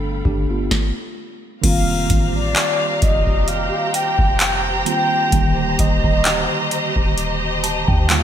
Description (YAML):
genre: contemporary R&B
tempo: 65 BPM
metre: 4/4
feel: swing 54% on 16ths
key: unclear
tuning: A4 = 438 Hz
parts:
  - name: tine electric piano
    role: accompaniment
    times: 0.0-8.2 s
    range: D3 to A5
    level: -24 LUFS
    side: right 2 dB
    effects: medium stereo tremolo
  - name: warm studio string section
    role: sustained chords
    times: 0.0-8.2 s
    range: G4 to B5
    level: -24 LUFS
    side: equal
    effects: sidechain pumping
  - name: clean 808-style bass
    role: bass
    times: 0.0-8.2 s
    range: Eb1 to Eb2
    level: -23 LUFS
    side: equal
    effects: none
  - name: booming analog drum machine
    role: drums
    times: 0.3-8.2 s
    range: crash cymbal, handclaps, hi-hat, kick drum, snare drum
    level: -19 LUFS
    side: equal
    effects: none
  - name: mellow horn-like synth lead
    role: melody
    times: 1.6-7.2 s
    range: D5 to G5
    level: -22 LUFS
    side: equal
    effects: chorus, digital delay
room: light reverb, digital ambience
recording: bright 1980s-style digital production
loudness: -16 LUFS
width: side -10 dB against mid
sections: 0.0-1.6 A section; 1.6-8.2 B section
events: stop 0.7-1.6; tine electric piano fill 7.2-8.2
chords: 0.0 G9; 1.6 F9sus4; 5.3 Ebmaj7